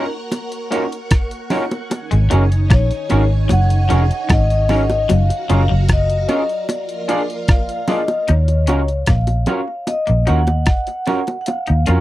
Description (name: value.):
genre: lovers rock reggae.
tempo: 75 BPM.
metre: 4/4.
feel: straight.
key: Eb minor.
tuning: A4 = 440 Hz.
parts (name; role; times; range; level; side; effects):
string machine, full ensemble; second line; 0.0-8.2 s; Eb4 to Db6; -28 LUFS; equal; ensemble chorus, tape echo.
overdriven tine electric piano; accompaniment; 0.0-12.0 s; Db4 to Bb4; -23 LUFS; left 3 dB; analog chorus.
electric guitar through a small old amp; stabs; 0.0-12.0 s; Bb3 to D5; -21 LUFS; right 5 dB; vibrato effect.
detuned 8-bit digital drum machine; drums; 0.3-12.0 s; hi-hat, kick drum, rim click; -17 LUFS; equal; none.
bongos; percussion; 0.3-12.0 s; none; -24 LUFS; right 1 dB; tape echo.
twangy electric guitar; riff; 2.1-12.0 s; F3 to F4; -26 LUFS; left 6 dB; none.
vintage muted fingered electric bass; bass; 2.1-12.0 s; F1 to F2; -15 LUFS; equal; none.
vibraphone with soft mallets; melody; 2.7-12.0 s; Db5 to Gb5; -22 LUFS; left 2 dB; tape echo.
room: little or no reverb.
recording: dry, close 1970s-style studio recording.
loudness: -15 LUFS.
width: side -15 dB against mid.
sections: 0.0-8.3 A section; 8.3-12.0 B section.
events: none.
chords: 0.0 Ebm7; 1.9 Ab7sus4; 5.1 Gbmaj7; 6.7 Bb7; 8.3 Ebm7.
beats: 0.32 1.11 | 1.91 2.71 3.50 4.30 | 5.09 5.89 6.69 7.48 | 8.28 9.08 9.88 10.67 | 11.47.